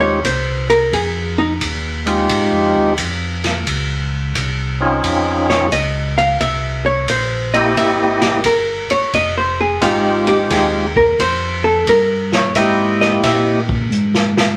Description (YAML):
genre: soul jazz organ trio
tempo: 88 BPM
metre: 4/4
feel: swing 67% on 8ths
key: F minor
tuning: A4 = 437 Hz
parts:
  - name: percussive tonewheel organ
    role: melody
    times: 0.0-13.6 s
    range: Ab3 to D#5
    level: -18 LUFS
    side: equal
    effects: slow rotary speaker
  - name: archtop guitar, miked and amplified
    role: accompaniment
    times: 0.0-13.5 s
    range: Eb4 to F5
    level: -18 LUFS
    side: equal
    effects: none
  - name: mellow tonewheel organ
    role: bass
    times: 0.0-14.6 s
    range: F1 to Bb2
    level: -24 LUFS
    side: equal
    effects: overdrive, chorus vibrato, slow rotary speaker
  - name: swinging big-band drum kit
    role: drums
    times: 0.2-14.5 s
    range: hi-hat, kick drum, ride cymbal, snare drum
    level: -24 LUFS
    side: equal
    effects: none
room: wet studio reverb, RT60 0.7 s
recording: vinyl crackle, lossy compression artefacts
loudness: -16 LUFS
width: mono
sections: 0.0-14.6 A section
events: hollow-body jazz guitar solo 0.0-14.6; drum fill 13.9-14.6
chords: 0.0 Fm7; 3.7 Dbmaj7; 6.4 C7#9; 9.1 Fm7; 11.9 C7#9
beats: 0.24 | 0.92 1.61 2.29 2.98 | 3.66 4.35 5.03 5.71 | 6.40 7.08 7.76 8.45 | 9.13 9.81 10.50 11.18 | 11.86 12.54 13.23 13.91